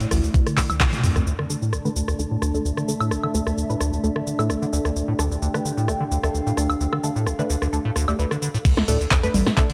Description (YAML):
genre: acid house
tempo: 130 BPM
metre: 4/4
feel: swing 53% on 16ths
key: D minor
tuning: A4 = 440 Hz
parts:
  - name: dark analog pad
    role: sustained chords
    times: 0.0-8.6 s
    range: A3 to A5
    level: -32 LUFS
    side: equal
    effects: chorus, sidechain pumping
  - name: deep acid bass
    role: riff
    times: 0.0-9.7 s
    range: C2 to D3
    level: -27 LUFS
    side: equal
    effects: tube saturation, lush chorus, sidechain pumping
  - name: punchy analog drum machine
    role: drums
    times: 0.0-9.7 s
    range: cabasa, congas, crash cymbal, handclaps, hi-hat, rim click, snare drum, toms, woodblock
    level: -28 LUFS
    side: equal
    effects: overdrive
  - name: round analog bass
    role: bass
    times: 0.1-1.2, 8.9-9.4 s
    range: A1 to F2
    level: -25 LUFS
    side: equal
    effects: sidechain pumping
  - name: electronic kick drum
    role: drums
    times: 0.3-0.9, 8.7-9.7 s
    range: none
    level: -22 LUFS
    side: equal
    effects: none
  - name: warbly tape-like pad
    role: texture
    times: 2.1-9.7 s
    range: D4 to F5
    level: -35 LUFS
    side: equal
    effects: chorus, built-in reverb, phaser, sidechain pumping
  - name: filtered dub chord stab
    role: stabs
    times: 1.5-9.7 s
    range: A3 to B4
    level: -32 LUFS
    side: equal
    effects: phaser, subtle chorus, analog delay
room: light reverb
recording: dry, gritty hardware recording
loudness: -22 LUFS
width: mono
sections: 0.0-1.3 A section; 1.3-8.7 B section; 8.7-9.7 C section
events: drum fill 0.6-1.3; band accent 0.8; filter sweep on synth stab 1.3-8.7; drop 8.7-9.7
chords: 0.0 D5